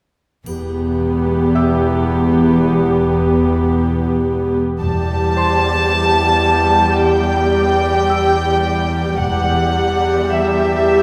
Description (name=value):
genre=cinematic, suspense film score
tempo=55 BPM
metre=4/4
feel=straight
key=E minor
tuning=A4 = 441 Hz
part: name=warm studio viola section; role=accompaniment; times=0.5-11.0 s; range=G3 to G4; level=-19 LUFS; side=equal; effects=none
part: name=dark studio double bass section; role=bass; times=0.5-10.2 s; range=E1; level=-25 LUFS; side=equal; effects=none
part: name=warm studio cello section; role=bass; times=0.5-11.0 s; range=E2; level=-22 LUFS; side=equal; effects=none
part: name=triangle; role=percussion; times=0.5-2.6 s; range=none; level=-47 LUFS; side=equal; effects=none
part: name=concert harp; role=texture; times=1.6-11.0 s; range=G4 to E6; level=-29 LUFS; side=equal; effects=none
part: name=warm chamber violin section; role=melody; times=4.8-11.0 s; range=E5 to A5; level=-20 LUFS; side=equal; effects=none
room=wet scoring stage reverb, RT60 1.5 s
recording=heard from further back in the room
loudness=-16 LUFS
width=mono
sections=0.5-4.8 A section; 4.8-11.0 B section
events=none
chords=0.5 Em